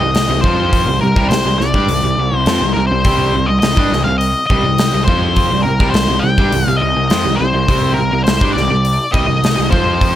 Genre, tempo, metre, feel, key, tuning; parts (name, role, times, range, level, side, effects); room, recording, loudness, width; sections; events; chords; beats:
classic rock; 103 BPM; 4/4; straight; C minor; A4 = 440 Hz
octave-fuzz lead guitar; melody; 0.0-10.2 s; Bb4 to G5; -17 LUFS; left 2 dB; distortion, slapback echo
raw garage guitar; riff; 0.0-10.1 s; C3 to F4; -19 LUFS; right 2 dB; overdrive
fuzz picked electric bass; bass; 0.0-10.1 s; C2 to G2; -18 LUFS; equal; overdrive
gated 80s drum kit; drums; 0.1-10.2 s; hi-hat, kick drum, snare drum; -17 LUFS; equal
small room ambience; -12 LUFS; side -12 dB against mid
0.0-10.2 A section
0.0 Cm
0.15 | 0.73 1.31 1.89 2.47 | 3.04 3.62 4.21 4.79 | 5.37 5.95 6.53 7.11 | 7.69 8.27 8.85 9.43 | 10.02